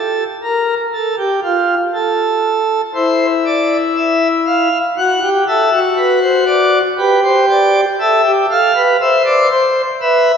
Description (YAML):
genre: classical, baroque-style 4-part fugue for pipe organ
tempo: 60 BPM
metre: 4/4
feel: straight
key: unclear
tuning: A4 = 440 Hz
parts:
  - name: pipe organ, principal chorus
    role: solo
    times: 0.0-10.4 s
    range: E4 to F#5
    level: -12 LUFS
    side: equal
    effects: none
room: wet church reverb, RT60 2.9 s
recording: heard from further back in the room, nothing above 8.0 kHz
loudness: -12 LUFS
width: side -7 dB against mid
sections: 0.0-10.4 A section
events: none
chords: 0.0 N.C.; 3.0 C/E; 5.0 D7/F#; 7.0 G; 9.0 C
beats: 0.93 1.95 | 2.96 3.96 4.97 5.98 | 6.99 7.99 9.00 10.00